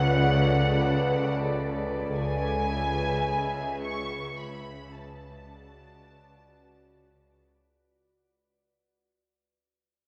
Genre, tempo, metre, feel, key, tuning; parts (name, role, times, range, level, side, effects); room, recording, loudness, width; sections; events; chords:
cinematic, suspense film score; free time; A4 = 441 Hz
dark studio violin section; melody; 0.0-7.4 s; F#5 to C#6; -33 LUFS; equal
glassy FM pad; sustained chords; 0.0-7.7 s; F#4 to E5; -34 LUFS; equal; ensemble chorus, built-in reverb
dark symphonic double bass section; bass; 0.0-7.5 s; C#2; -34 LUFS; equal
warm studio cello section; bass; 0.0-7.5 s; C#3; -34 LUFS; equal
bowed-like drone; drone; 0.0-7.7 s; C#2; -36 LUFS; equal; built-in reverb
wet scoring stage reverb, RT60 2.0 s; heard from further back in the room; -27 LUFS; mono
0.0-7.7 A section
fade-out 0.0-7.7
0.0 Bm7/C#; 2.2 C#m7; 4.9 Bm7/C#